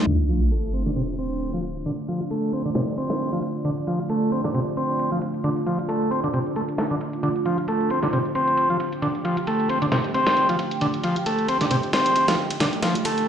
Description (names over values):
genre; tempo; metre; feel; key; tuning
breakbeat, breaks; 134 BPM; 4/4; swing 56% on 16ths; D minor; A4 = 440 Hz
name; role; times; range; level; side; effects
deep dark ambient pad; sustained chords; 0.0-13.3 s; A3 to G5; -28 LUFS; right 2 dB; chorus, built-in reverb
combo organ; riff; 0.1-13.3 s; C3 to C4; -23 LUFS; equal; overdrive, vintage 12-bit sampler grit, low-pass filter, tape echo
dusty soul sampler-style drum kit; drums; 0.1-13.2 s; ride cymbal, snare drum; -28 LUFS; equal; high-pass filter on cymbals, high-pass filter on kick, high-pass filter on snare, high-pass filter on room
electronic hi-hat; drums; 0.1-13.3 s; none; -38 LUFS; equal; low-pass filter on hats, low-pass filter on snare, low-pass filter on room
sub drop; sound effects; 0.1-1.9 s; none; -24 LUFS; equal; none
room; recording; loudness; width
moderate plate reverb, RT60 1.4 s; played on a big sound system in a bare room, large studio reverb, low-pass filter; -21 LUFS; side -8 dB against mid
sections
0.1-13.3 A section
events
impact 0.1-1.9; filter sweep on drum 0.1-13.3; filter sweep on ambient pad 0.1-13.3; filter sweep 0.1-13.3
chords
0.1 Dm